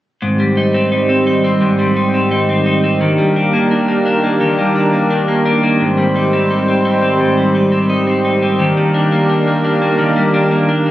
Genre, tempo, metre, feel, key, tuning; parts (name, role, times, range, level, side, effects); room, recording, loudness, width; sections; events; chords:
dream pop; 86 BPM; 4/4; straight; Ab lydian; A4 = 440 Hz
warm analog pad; sustained chords; 0.2-10.9 s; Eb3 to C5; -14 LUFS; right 1 dB; chorus, tremolo
clean electric guitar; arpeggios; 0.2-10.9 s; Ab2 to Eb4; -15 LUFS; left 1 dB; lush chorus, tape echo
moderate plate reverb, RT60 2.6 s; recorded on a phone in the room, studio reverb; -12 LUFS; side -14 dB against mid
0.2-10.9 A section
0.2 Abmaj7; 3.0 Ebmaj7; 5.8 Abmaj7; 8.6 Ebmaj7